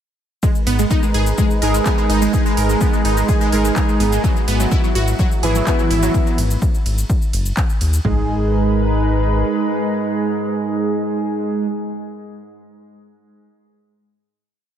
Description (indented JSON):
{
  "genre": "melodic techno",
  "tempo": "126 BPM",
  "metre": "4/4",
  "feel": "straight",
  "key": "G# minor",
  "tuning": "A4 = 442 Hz",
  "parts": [
    { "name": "lush unison pad", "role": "sustained chords", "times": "0.4-11.7 s", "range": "G#3 to B4", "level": "-25 LUFS", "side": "right 1 dB", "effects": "chorus, sidechain pumping" },
    { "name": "wide unison pluck", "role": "arpeggios", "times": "0.4-8.3 s", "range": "F#3 to A#4", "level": "-22 LUFS", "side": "right 1 dB", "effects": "phaser, sidechain pumping, ping-pong delay" },
    { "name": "overtone-sweeping drone", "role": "drone", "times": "1.4-11.7 s", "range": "G#2 to G#3", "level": "-30 LUFS", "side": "right 1 dB", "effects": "chorus, built-in reverb, sidechain pumping" },
    { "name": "punchy analog drum machine", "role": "drums", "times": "0.4-8.2 s", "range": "kick drum, toms", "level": "-19 LUFS", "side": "equal", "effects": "none" },
    { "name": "techno drum kit", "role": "drums", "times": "0.4-8.0 s", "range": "handclaps, hi-hat, ride cymbal, shaker", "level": "-28 LUFS", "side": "equal", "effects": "none" },
    { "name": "round analog bass", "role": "bass", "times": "0.7-9.4 s", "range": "F#1 to D#2", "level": "-19 LUFS", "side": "left 1 dB", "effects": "sidechain pumping" },
    { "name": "analog synth brass", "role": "stabs", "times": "1.6-11.7 s", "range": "E3 to G#4", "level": "-21 LUFS", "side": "right 2 dB", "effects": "chorus, cassette tape, sidechain pumping, ping-pong delay" }
  ],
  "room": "light reverb, digital ambience",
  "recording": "none",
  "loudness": "-15 LUFS",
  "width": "side -9 dB against mid",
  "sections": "0.4-8.0 drop; 8.0-11.9 final chord",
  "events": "drop 0.4-8.0",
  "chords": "0.4 G#madd9; 4.2 Eadd9/G#; 8.0 G#madd9",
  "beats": "| 0.43 0.91 1.38 1.86 | 2.33 2.81 3.29 3.76 | 4.24 4.71 5.19 5.67 | 6.14 6.62 7.10 7.57 | 8.05 8.53 9.00 9.48 | 9.95 10.43 10.91 11.38"
}